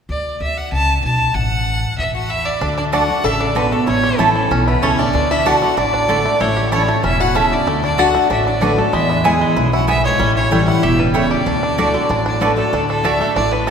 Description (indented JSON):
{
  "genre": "bluegrass",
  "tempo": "190 BPM",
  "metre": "4/4",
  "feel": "straight",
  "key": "D major",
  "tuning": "A4 = 440 Hz",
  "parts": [
    { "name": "clear fiddle", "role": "melody", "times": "0.1-13.7 s", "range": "G#4 to A5", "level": "-20 LUFS", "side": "equal", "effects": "none" },
    { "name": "upright bass", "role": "bass", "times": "0.1-13.7 s", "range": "E1 to E2", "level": "-21 LUFS", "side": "equal", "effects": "none" },
    { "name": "lap resonator guitar", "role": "second line", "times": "2.1-13.7 s", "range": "G#3 to A4", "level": "-23 LUFS", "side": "left 5 dB", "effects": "none" },
    { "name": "picked steel-string acoustic guitar", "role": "accompaniment", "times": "2.6-13.7 s", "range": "E2 to F#4", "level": "-20 LUFS", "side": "equal", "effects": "none" },
    { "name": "bluegrass banjo", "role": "arpeggios", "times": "2.6-13.7 s", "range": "D3 to G4", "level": "-22 LUFS", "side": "right 3 dB", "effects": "none" },
    { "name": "mandolin", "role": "stabs", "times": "2.9-13.7 s", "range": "A3 to A5", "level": "-21 LUFS", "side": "right 2 dB", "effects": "none" }
  ],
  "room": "wet cathedral reverb, RT60 4.2 s",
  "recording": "recorded in a church or concert hall",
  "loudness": "-14 LUFS",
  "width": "side -7 dB against mid",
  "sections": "0.1-2.6 A section; 2.6-12.7 B section",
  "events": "none",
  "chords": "0.1 D5; 1.4 A5; 2.6 D; 3.9 A; 5.1 D; 6.4 A; 7.7 D; 8.9 E; 10.2 A7; 11.5 D"
}